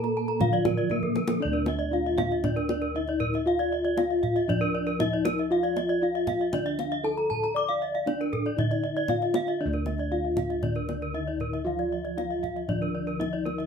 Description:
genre	Balinese gamelan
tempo	117 BPM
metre	4/4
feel	straight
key	D pelog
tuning	A4 = 441 Hz
part	gamelan-type bronze metallophone	melody	0.0-13.7 s	Bb3 to D5	-29 LUFS	left 2 dB	none
part	gamelan-type bronze metallophone	accompaniment	0.0-1.4, 9.6-13.7 s	D3 to Bb3	-35 LUFS	right 4 dB	none
part	gamelan-type bronze metallophone	arpeggios	0.0-13.7 s	Bb4 to D6	-32 LUFS	left 4 dB	none
part	gamelan-type bronze metallophone	arpeggios	0.0-13.6 s	A4 to Bb5	-33 LUFS	right 6 dB	none
part	gamelan-type bossed gongs	bass	0.0-13.7 s	D2 to D5	-33 LUFS	right 1 dB	none
part	kendang	percussion	0.0-13.7 s	none	-31 LUFS	equal	none
room	wet studio ambience, RT60 0.5 s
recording	band playing live in one room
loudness	-24 LUFS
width	side -6 dB against mid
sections	0.0-1.4 A section; 1.4-13.7 B section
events	drum fill 0.9-1.4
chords	none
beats	0.40 0.90 | 1.41 1.92 2.43 2.94 | 3.46 3.97 4.48 5.00 | 5.51 6.02 6.53 7.05 | 7.56 8.07 8.59 9.10 | 9.61 10.12 10.64 11.15 | 11.66 12.17 12.69 13.20

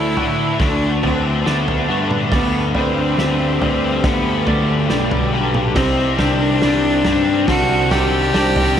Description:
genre	post-rock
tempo	70 BPM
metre	4/4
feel	straight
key	G major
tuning	A4 = 440 Hz
part	bright cello	melody	0.0-8.8 s	G3 to G4	-19 LUFS	equal	tape echo
part	deep dark ambient pad	sustained chords	0.4-8.8 s	B4 to D6	-30 LUFS	right 3 dB	chorus, built-in reverb
part	electric guitar through a small old amp	arpeggios	0.0-8.8 s	C3 to G4	-26 LUFS	right 1 dB	lush chorus, tape echo
part	twangy electric guitar	arpeggios	0.0-8.8 s	B4 to F#5	-30 LUFS	right 8 dB	tape echo
part	cranked stack guitar	riff	0.0-8.8 s	G2 to D4	-21 LUFS	left 6 dB	overdrive, ensemble chorus
part	fuzz picked electric bass	bass	0.0-8.7 s	B1 to A2	-21 LUFS	right 1 dB	overdrive
part	loose indie drum kit	drums	0.2-8.8 s	kick drum, snare drum, toms	-23 LUFS	right 1 dB	none
room	moderate plate reverb, RT60 2.6 s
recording	dreamy mix soaked in reverb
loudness	-14 LUFS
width	side -9 dB against mid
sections	0.0-8.8 A section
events	build-up 0.0-8.8; drum fill 0.0-8.8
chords	0.0 D6; 2.3 G/D; 5.8 Cmadd9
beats	0.60 1.46 | 2.33 3.19 4.04 4.91 | 5.76 6.62 7.48 8.34

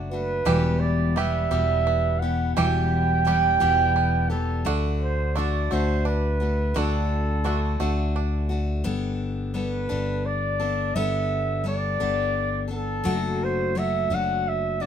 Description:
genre	acoustic folk duo or small band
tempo	57 BPM (dotted quarters)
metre	6/8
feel	straight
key	unclear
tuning	A4 = 438 Hz
part	picked steel-string acoustic guitar	accompaniment	0.0-14.9 s	E2 to A4	-28 LUFS	left 3 dB	none
part	bluegrass banjo	arpeggios	0.0-8.9 s	D3 to G4	-32 LUFS	right 7 dB	none
part	fingered electric bass	bass	0.0-14.9 s	E1 to D2	-26 LUFS	left 1 dB	none
part	mellow flugelhorn	melody	0.1-14.9 s	A4 to G5	-26 LUFS	right 4 dB	none
room	light reverb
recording	minimal, uncompressed stereo recording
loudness	-22 LUFS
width	side -8 dB against mid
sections	0.0-8.9 A section; 8.9-14.9 A section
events	none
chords	0.5 Em; 4.7 D; 8.9 Gadd9; 13.1 D/F#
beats	| 0.47 1.52 | 2.57 3.62 | 4.67 5.72 | 6.76 7.81 | 8.86 9.91 | 10.96 12.01 | 13.05 14.10

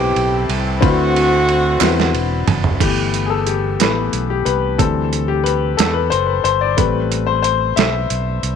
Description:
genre	slow gospel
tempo	60 BPM (dotted quarters)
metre	6/8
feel	straight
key	G major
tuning	A4 = 440 Hz
part	clear saxophone section	melody	0.0-2.1 s	A3 to G4	-17 LUFS	right 1 dB	none
part	clear grand piano	accompaniment	0.0-8.6 s	A2 to E5	-18 LUFS	left 11 dB	none
part	fingered electric bass	bass	0.0-8.6 s	E1 to E2	-21 LUFS	right 2 dB	none
part	dusty soul sampler-style drum kit	drums	0.2-8.6 s	crash cymbal, hi-hat, kick drum, ride cymbal, snare drum, toms	-20 LUFS	right 6 dB	overdrive
part	group handclap	percussion	1.8-2.1 s	none	-20 LUFS	right 17 dB	none
room	light reverb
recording	1960s-style stereo with parts hard left and right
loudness	-14 LUFS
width	side -7 dB against mid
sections	0.0-2.8 A section; 2.8-8.6 B section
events	drum fill 1.8-2.8; grand piano solo 2.8-8.6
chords	0.0 Am7; 0.8 D13; 2.8 G69; 4.8 D9sus4; 6.8 Am9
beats	| 0.82 1.81 | 2.81 3.80 | 4.79 5.79 | 6.78 7.77

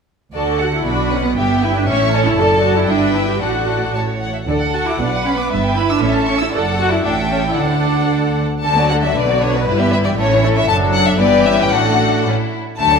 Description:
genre	quick classical-period movement for string orchestra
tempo	116 BPM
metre	2/4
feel	rubato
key	D major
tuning	A4 = 441 Hz
part	rich chamber violin section	melody	0.3-13.0 s	B4 to C#6	-20 LUFS	left 6 dB	none
part	rich chamber violin section	second line	0.3-13.0 s	A3 to E6	-20 LUFS	left 1 dB	none
part	rich chamber viola section	accompaniment	0.3-13.0 s	D3 to A4	-19 LUFS	right 1 dB	none
part	rich chamber cello section	bass	0.3-13.0 s	F#2 to D3	-22 LUFS	right 1 dB	none
part	warm studio double bass section	bass	0.3-13.0 s	F#1 to D2	-23 LUFS	right 3 dB	none
room	wet scoring stage reverb, RT60 1.9 s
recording	none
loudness	-14 LUFS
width	side -5 dB against mid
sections	0.3-8.6 A section; 8.6-13.0 A section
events	none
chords	0.3 D; 0.9 Bm; 1.4 Em/G; 1.9 A; 2.4 D/F#; 2.9 Em/G; 3.4 D/A; 3.9 A; 4.5 D; 5.0 Bm; 5.5 Em/G; 6.0 A; 6.5 D/F#; 7.0 A5; 7.6 D; 9.2 Bm; 9.7 Em/G; 10.2 A; 10.7 D/F#; 11.2 Em/G; 11.7 D/A; 12.3 A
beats	| 0.35 0.87 | 1.38 1.88 | 2.38 2.89 | 3.41 3.94 | 4.48 5.00 | 5.52 6.03 | 6.54 7.05 | 7.57 8.11 | 8.64 9.16 | 9.68 10.18 | 10.69 11.20 | 11.73 12.26 | 12.80

